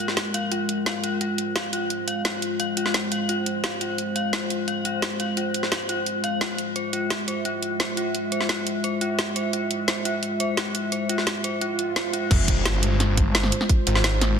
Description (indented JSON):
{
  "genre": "dark technical drum and bass",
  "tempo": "173 BPM",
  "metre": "4/4",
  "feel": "straight",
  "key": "F harmonic minor",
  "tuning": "A4 = 441 Hz",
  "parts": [
    { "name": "dark analog pad", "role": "sustained chords", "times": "0.0-14.4 s", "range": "Ab3 to E5", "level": "-28 LUFS", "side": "equal", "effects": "chorus, sidechain pumping" },
    { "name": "dark detuned synth bell", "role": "arpeggios", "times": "0.0-12.2 s", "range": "F4 to F5", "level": "-29 LUFS", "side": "left 3 dB", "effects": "chorus, tremolo, vintage 12-bit sampler grit, sidechain pumping, tape echo" },
    { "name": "drum and bass drum kit", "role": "drums", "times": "0.0-14.3 s", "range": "crash cymbal, hi-hat, snare drum", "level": "-26 LUFS", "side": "equal", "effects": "none" },
    { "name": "swell and impact", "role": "sound effects", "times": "11.7-13.7 s", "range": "none", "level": "-32 LUFS", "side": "right 4 dB", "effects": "none" },
    { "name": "snarling distorted saw bass", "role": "bass", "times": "12.3-14.4 s", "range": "F1 to Ab1", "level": "-22 LUFS", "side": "equal", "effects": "distortion, overdrive" },
    { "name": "electronic kick drum", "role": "drums", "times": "12.3-13.8 s", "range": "none", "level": "-20 LUFS", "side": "equal", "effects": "none" }
  ],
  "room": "wet lush hall reverb, RT60 1.7 s",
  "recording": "dense, heavily limited modern master",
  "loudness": "-22 LUFS",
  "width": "side -7 dB against mid",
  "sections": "0.0-12.3 A section; 12.3-14.4 B section",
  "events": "swell 11.7-12.3; drop 12.3-14.4; impact 12.3-13.7",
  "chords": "0.0 Fm"
}